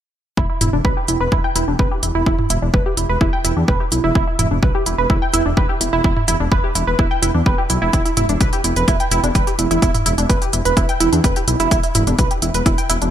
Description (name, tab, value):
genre	melodic techno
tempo	127 BPM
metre	4/4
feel	straight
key	E minor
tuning	A4 = 440 Hz
part	tight sequenced synth	arpeggios	0.4-13.1 s	D4 to G5	-19 LUFS	right 2 dB	chorus, sidechain pumping, ping-pong delay
part	swelling detuned saw bass	bass	0.4-13.1 s	E1 to E2	-20 LUFS	equal	tube saturation, sidechain pumping
part	electronic kick drum	drums	0.4-12.8 s	none	-18 LUFS	equal	overdrive
part	techno drum kit	drums	0.6-13.1 s	hi-hat, toms	-21 LUFS	equal	overdrive
room	light reverb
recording	bright 1980s-style digital production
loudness	-15 LUFS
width	side -10 dB against mid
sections	0.4-13.1 A section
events	none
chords	0.4 E5